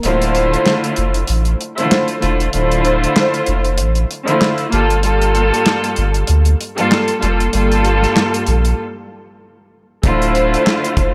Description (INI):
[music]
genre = hip hop, boom-bap hip-hop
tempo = 96 BPM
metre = 4/4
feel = swing 58% on 16ths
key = D minor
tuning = A4 = 444 Hz
[part]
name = dark chamber string section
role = accompaniment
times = 0.0-11.1 s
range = G2 to C5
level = -18 LUFS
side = equal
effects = cassette tape, high-pass filter, low-pass filter
[part]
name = soft dub sub bass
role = bass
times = 0.0-11.1 s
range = D1 to D2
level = -18 LUFS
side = equal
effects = none
[part]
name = warm soul drum kit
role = drums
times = 0.0-11.1 s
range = handclaps, hi-hat, kick drum, snare drum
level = -21 LUFS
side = equal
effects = none
[sound]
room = light reverb, studio ambience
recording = none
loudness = -15 LUFS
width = mono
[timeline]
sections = 0.0-11.1 A section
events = break 0.0-10.0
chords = 0.0 Dm9; 4.7 Gm7; 10.0 Dm9